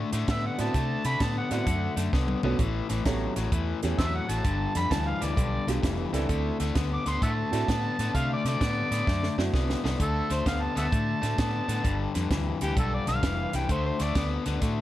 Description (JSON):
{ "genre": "electric blues shuffle", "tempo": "130 BPM", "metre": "4/4", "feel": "swing 66% on 8ths", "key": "D mixolydian", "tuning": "A4 = 440 Hz", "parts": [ { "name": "crunchy overdriven guitar", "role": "riff", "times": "0.0-14.8 s", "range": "G2 to B3", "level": "-31 LUFS", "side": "left 5 dB", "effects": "none" }, { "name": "vintage muted fingered electric bass", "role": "bass", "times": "0.0-14.8 s", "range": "F1 to C3", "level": "-30 LUFS", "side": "equal", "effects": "none" }, { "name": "compact cocktail drum kit", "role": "drums", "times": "0.1-14.8 s", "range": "hi-hat, kick drum, snare drum, toms", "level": "-30 LUFS", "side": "right 1 dB", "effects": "none" }, { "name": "overdriven harmonica", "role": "melody", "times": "0.3-14.3 s", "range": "G4 to D6", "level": "-32 LUFS", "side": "right 1 dB", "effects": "none" }, { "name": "warm grand piano", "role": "accompaniment", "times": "0.6-10.0 s", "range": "A3 to A4", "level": "-34 LUFS", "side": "right 5 dB", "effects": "none" } ], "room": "studio ambience", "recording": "none", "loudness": "-25 LUFS", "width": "side -14 dB against mid", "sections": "0.0-10.0 A section; 10.0-14.8 A section", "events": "drum fill 2.1-2.6, 9.1-10.0", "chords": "0.0 D7; 2.6 A9; 4.4 G9; 6.3 D9; 10.0 D5; 11.8 G7; 13.7 D7(no3)" }